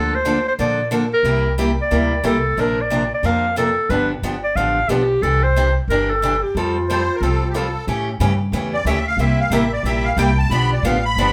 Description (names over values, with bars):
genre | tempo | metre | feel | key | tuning
acoustic string swing (jazz manouche) | 181 BPM | 4/4 | swing 62% on 8ths | unclear | A4 = 442 Hz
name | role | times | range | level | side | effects
breathy clarinet | melody | 0.0-7.8 s | F4 to F5 | -21 LUFS | equal | none
picked old ladder-braced acoustic guitar | accompaniment | 0.0-11.3 s | C3 to Bb4 | -24 LUFS | equal | none
upright bass | bass | 0.0-11.3 s | G1 to Bb2 | -24 LUFS | equal | none
musette accordion | second line | 6.9-11.3 s | G4 to B5 | -24 LUFS | equal | none
room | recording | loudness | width
moderate studio reverb, RT60 0.7 s | band playing live in one room | -19 LUFS | mono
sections
0.0-7.9 A section; 7.9-11.3 B section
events
accordion solo 7.9-11.3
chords
0.0 Bbmaj7/D; 1.3 C7; 2.6 Bbadd9; 3.9 G7; 5.2 Cadd9; 6.5 Fadd9; 7.9 A7; 9.2 C7; 10.5 G7